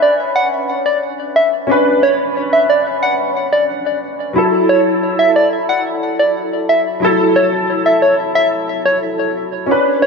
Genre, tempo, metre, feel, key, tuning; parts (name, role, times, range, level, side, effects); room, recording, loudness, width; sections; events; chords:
dancehall; 90 BPM; 4/4; straight; F# minor; A4 = 440 Hz
soft struck synth lead; melody; 0.0-10.1 s; C#5 to F#5; -15 LUFS; equal; chorus, ping-pong delay
warm baby grand piano; accompaniment; 0.0-10.1 s; F#3 to B4; -16 LUFS; left 1 dB; ensemble chorus
wet plate reverb, RT60 3.4 s; dreamy mix soaked in reverb; -12 LUFS; side -4 dB against mid
0.0-10.1 A section
0.0 Bmadd9; 4.4 F#m7